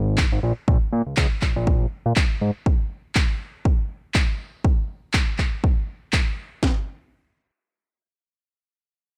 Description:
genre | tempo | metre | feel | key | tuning
filtered disco house | 121 BPM | 4/4 | swing 57% on 16ths | unclear | A4 = 440 Hz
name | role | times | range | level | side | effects
fat analog bass | bass | 0.0-2.5 s | Ab1 to Bb2 | -24 LUFS | equal | sidechain pumping, low-pass filter
electronic handclaps | drums | 0.2-6.2 s | none | -28 LUFS | equal | sidechain pumping on hats, studio reverb
house drum kit | drums | 0.2-6.8 s | kick drum, snare drum | -22 LUFS | equal | studio reverb
room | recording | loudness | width
digital ambience | none | -23 LUFS | mono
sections
0.0-6.6 A section; 6.6-9.2 B section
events
none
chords
none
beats
0.18 | 0.68 1.17 1.67 2.17 | 2.66 3.16 3.65 4.15 | 4.64 5.14 5.64 6.13 | 6.63

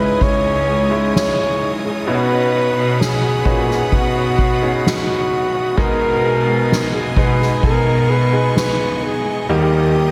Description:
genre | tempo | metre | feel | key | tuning
pop ballad | 65 BPM | 4/4 | straight | B major | A4 = 441 Hz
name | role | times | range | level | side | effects
dark flugelhorn | melody | 0.0-10.1 s | F#4 to C#5 | -22 LUFS | equal | slapback echo, delay
bright concert grand piano | accompaniment | 0.0-10.1 s | B2 to B4 | -25 LUFS | equal | slapback echo
clear studio string section | sustained chords | 0.0-10.1 s | B3 to D#6 | -30 LUFS | equal | none
flamenco guitar | arpeggios | 0.0-10.1 s | B2 to G#4 | -29 LUFS | equal | none
clear studio cello section | bass | 0.0-10.1 s | C#2 to B2 | -22 LUFS | equal | none
soft-mallet drum kit | drums | 0.2-10.1 s | kick drum, ride cymbal, snare drum | -24 LUFS | equal | none
room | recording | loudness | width
moderate concert hall reverb, RT60 1.9 s, studio reverb | big arena sound | -17 LUFS | mono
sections
0.0-10.1 A section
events
none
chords
0.0 C#madd9; 2.1 Badd9; 5.8 G#m/B; 9.5 D#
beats
0.21 1.14 | 2.07 2.99 3.92 4.84 | 5.77 6.70 7.62 8.55 | 9.49

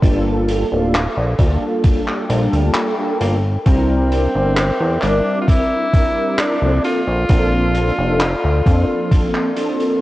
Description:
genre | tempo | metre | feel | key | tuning
vaporwave | 66 BPM | 4/4 | straight | G dorian | A4 = 442 Hz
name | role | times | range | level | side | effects
mellow synth brass | accompaniment | 0.0-10.0 s | F3 to Bb4 | -20 LUFS | equal | ensemble chorus
warbly tape-like pad | sustained chords | 0.0-10.0 s | A4 to D6 | -27 LUFS | equal | chorus, built-in reverb, vintage 12-bit sampler grit
chorused synth bass | bass | 0.0-8.8 s | D1 to F2 | -17 LUFS | equal | tube saturation
electronic kick drum | drums | 0.0-9.3 s | none | -15 LUFS | equal | vintage 12-bit sampler grit
oversized low-tuned drum kit | drums | 0.0-10.0 s | handclaps, hi-hat | -25 LUFS | equal | vintage 12-bit sampler grit
clear tenor saxophone | melody | 3.2-9.5 s | Bb3 to F4 | -21 LUFS | equal | tape echo
room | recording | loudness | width
light reverb, small room ambience | worn, warbling old tape, cassette tape, warbly pitch drift | -14 LUFS | side -16 dB against mid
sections
0.0-10.0 A section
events
none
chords
0.0 Gm9; 3.7 C9; 6.8 Bbmaj9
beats
| 0.03 0.93 1.84 2.75 | 3.66 4.57 5.48 6.39 | 7.30 8.21 9.12

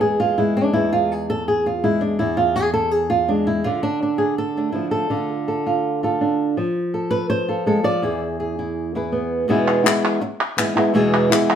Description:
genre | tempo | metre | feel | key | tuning
flamenco | 165 BPM | 4/4 | straight | unclear | A4 = 440 Hz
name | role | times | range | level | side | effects
flamenco guitar | melody | 0.0-11.6 s | E2 to D5 | -18 LUFS | right 1 dB | none
palmas hand claps | percussion | 9.7-11.6 s | none | -21 LUFS | left 1 dB | none
room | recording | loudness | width
wet studio reverb, RT60 0.7 s | band playing live in one room | -18 LUFS | side -8 dB against mid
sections
0.0-9.5 A section; 9.5-11.6 B section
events
nylon-string guitar solo 0.0-9.5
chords
0.0 E; 3.7 Dm; 6.6 F; 8.0 E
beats
0.02 0.38 | 0.75 1.11 1.47 1.84 | 2.20 2.57 2.93 3.29 | 3.66 4.02 4.39 4.75 | 5.12 5.48 5.84 6.21 | 6.57 6.94 7.30 7.67 | 8.03 8.39 8.76 9.12 | 9.49 9.85 10.22 10.58 | 10.95 11.31

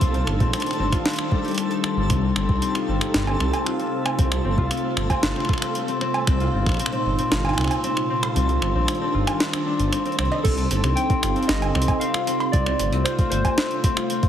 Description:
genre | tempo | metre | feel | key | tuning
IDM | 115 BPM | 4/4 | straight | unclear | A4 = 441 Hz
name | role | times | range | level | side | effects
warbly tape-like pad | sustained chords | 0.0-14.3 s | Bb2 to A4 | -28 LUFS | equal | chorus, built-in reverb
concert harp | arpeggios | 0.0-14.3 s | G3 to G4 | -26 LUFS | left 3 dB | tape echo
dark detuned saw bass | bass | 0.0-13.4 s | G1 to C2 | -24 LUFS | equal | none
electronic kick drum | drums | 0.0-6.8, 10.4-14.3 s | none | -22 LUFS | equal | none
jungle sampler-style drum kit | drums | 0.0-14.3 s | cowbell, crash cymbal, finger snaps, hi-hat, snare drum | -26 LUFS | right 1 dB | none
twinkling granular texture | texture | 0.0-10.5 s | A3 to A4 | -35 LUFS | right 2 dB | built-in reverb
warbly lo-fi synth keys | melody | 10.4-14.3 s | A4 to G5 | -28 LUFS | equal | chorus, vintage 12-bit sampler grit, digital delay
room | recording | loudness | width
moderate plate reverb, RT60 2.3 s | heavily compressed radio sound, multiband compression | -20 LUFS | side -10 dB against mid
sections
0.0-10.4 A section; 10.4-14.3 B section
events
kick drops out 8.4-10.4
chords
0.0 Ebmaj7; 2.1 F9; 6.3 Cm7; 8.4 Ebmaj7; 10.4 F9; 12.5 Dm7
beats
| 0.01 0.53 1.06 1.58 | 2.10 2.62 3.14 3.67 | 4.19 4.71 5.23 5.75 | 6.27 6.79 7.32 7.84 | 8.36 8.88 9.40 9.93 | 10.45 10.97 11.49 12.01 | 12.53 13.06 13.58 14.10

